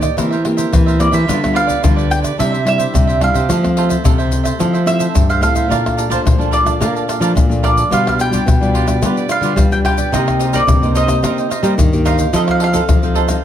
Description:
samba and choro; 109 BPM; 4/4; straight; F major, Bb major from 5.7 s; A4 = 439 Hz
cavaquinho; accompaniment; 0.0-13.4 s; D4 to A5; -22 LUFS; right 8 dB
nylon-string guitar; accompaniment; 0.0-13.4 s; G2 to A4; -21 LUFS; left 3 dB
nylon-string guitar; bass; 0.0-13.4 s; G2 to C4; -18 LUFS; right 1 dB
tube shaker, surdo, pandeiro and tamborim; percussion; 0.0-13.4 s; -16 LUFS; left 2 dB
mandolin; melody; 1.0-13.4 s; C5 to G5; -19 LUFS; right 1 dB
light reverb; -12 LUFS; side -10 dB against mid
0.0-5.7 A section; 5.7-13.4 B section
0.2 C7/E; 1.3 G7/D; 2.4 Cadd9; 3.5 Fmaj7; 5.7 Bbmaj7; 7.9 G7/B; 10.1 Cm7; 12.3 F7

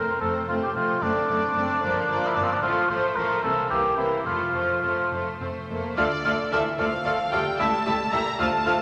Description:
quick classical-period movement for symphony orchestra; 74 BPM (dotted quarters); 6/8; rubato; F major; A4 = 441 Hz
rich studio violin section; melody; 0.0-8.8 s; C5 to Bb5; -34 LUFS; equal
dark cor anglais; second line; 0.0-8.8 s; C4 to C5; -28 LUFS; equal
rich studio violin section; second line; 0.0-8.7 s; A3 to F5; -34 LUFS; equal
warm studio viola section; accompaniment; 0.0-8.7 s; E3 to F4; -33 LUFS; equal
dark studio double bass section; bass; 0.0-8.7 s; F1 to D2; -40 LUFS; equal
warm studio cello section; bass; 0.2-8.7 s; C#2 to C3; -41 LUFS; equal
silver concert flute; second line; 6.0-8.7 s; E6 to F6; -30 LUFS; equal
mellow bassoon; accompaniment; 6.0-8.8 s; F3 to A3; -34 LUFS; equal
dark French horn section; sustained chords; 6.0-8.8 s; D3 to Bb3; -35 LUFS; equal
wet scoring stage reverb, RT60 1.8 s; -24 LUFS; mono
0.0-6.0 A section; 6.0-8.8 B section
0.0 F; 1.0 D7/F#; 1.8 Gm7; 2.6 F; 3.4 C7; 4.3 F; 6.0 Dm; 7.6 A7

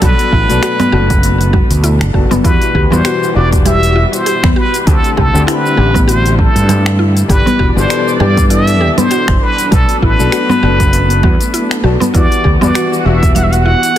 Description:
organic downtempo; 99 BPM; 4/4; swing 56% on 16ths; E minor; A4 = 440 Hz
trumpet with plunger mute; melody; 0.0-14.0 s; A4 to F#5; -16 LUFS; equal; ping-pong delay
felt-muted upright piano; accompaniment; 0.0-14.0 s; B2 to A4; -19 LUFS; left 6 dB; sidechain pumping, ping-pong delay
dark studio string section; sustained chords; 0.0-14.0 s; B2 to D5; -21 LUFS; right 1 dB; sidechain pumping
mallet-like synth pluck; arpeggios; 0.0-13.9 s; B3 to E5; -19 LUFS; left 1 dB; chorus, ping-pong delay
fretless electric bass; bass; 0.0-13.7 s; E1 to G2; -13 LUFS; equal
electronic kick drum; drums; 0.0-13.3 s; -13 LUFS; equal; overdrive
organic electronic drum kit; drums; 0.0-14.0 s; congas, finger snaps, hi-hat, shaker; -19 LUFS; right 3 dB; overdrive, soft clipping on snare
light reverb; dense, heavily limited modern master; -9 LUFS; side -11 dB against mid
0.0-14.0 A section
0.0 Bm7; 2.4 Em9; 4.9 D7sus4; 7.3 G6; 9.7 Bm7; 12.1 Em9

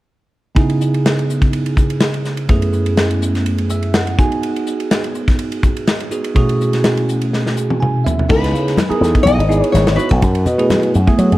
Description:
electric jazz fusion; 124 BPM; 4/4; swing 53% on 16ths; C# minor; A4 = 440 Hz
bell-like tine electric piano; accompaniment; 0.5-11.4 s; F#2 to G#5; -17 LUFS; right 2 dB; phaser
modern studio drum kit; drums; 0.6-11.4 s; crash cymbal, hi-hat, kick drum, ride cymbal, snare drum, toms; -18 LUFS; equal
nylon-string guitar; melody; 8.3-10.6 s; A4 to D#5; -18 LUFS; left 4 dB
slap bass with an envelope filter; bass; 8.3-11.4 s; G#1 to F#3; -15 LUFS; equal
congas; percussion; 8.3-11.3 s; -21 LUFS; left 2 dB
light reverb, small room ambience; -13 LUFS; side -16 dB against mid
0.6-8.3 A section; 8.3-11.4 B section
tine electric piano fill 3.5-4.4, 7.6-8.3; drum fill 7.3-8.3
0.6 C#m9; 2.5 F#m11; 4.2 G#m7; 6.4 B13sus4; 8.3 C#m9; 10.2 F#m11

